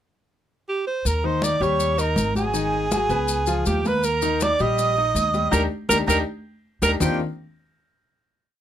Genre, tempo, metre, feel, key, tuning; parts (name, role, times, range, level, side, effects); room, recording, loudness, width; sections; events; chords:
Afro-Cuban jazz; 161 BPM; 4/4; straight; Eb major; A4 = 440 Hz
warm alto saxophone; melody; 0.7-7.2 s; G4 to G5; -23 LUFS; right 3 dB
breathy bright jazz flute; second line; 1.1-7.2 s; G4 to Eb6; -26 LUFS; right 4 dB
upright bass; bass; 1.1-7.2 s; Ab1 to Eb2; -26 LUFS; equal
congas; percussion; 1.1-7.1 s; -28 LUFS; left 1 dB
maracas; percussion; 1.1-7.1 s; -30 LUFS; left 6 dB
warm concert grand piano; accompaniment; 1.2-7.2 s; Eb3 to Eb5; -26 LUFS; left 5 dB
light reverb; close, detailed microphones; -20 LUFS; side -10 dB against mid
0.0-1.1 pickup bar; 1.1-7.0 A section; 7.0-8.5 final chord
band accent 5.5-7.0
0.0 N.C.; 1.1 Eb; 2.5 Abm7; 3.3 Db9; 4.0 Ebmaj7; 7.0 Ebsus2